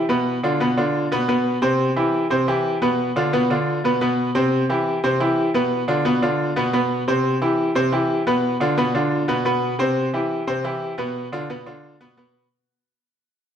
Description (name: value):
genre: latin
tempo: 176 BPM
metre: 4/4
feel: straight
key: unclear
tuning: A4 = 440 Hz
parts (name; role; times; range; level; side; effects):
- bright concert grand piano; solo; 0.0-12.5 s; B2 to C5; -18 LUFS; equal; none
room: wet large studio reverb, RT60 1.4 s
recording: none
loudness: -18 LUFS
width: side -8 dB against mid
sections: 0.0-9.8 A section; 9.8-12.5 B section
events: fade-out 9.8-12.5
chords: 0.3 Bdim; 1.6 C; 3.0 Bdim; 4.3 C; 5.7 Bdim; 7.1 C; 8.4 Bdim; 9.8 C; 11.2 Bdim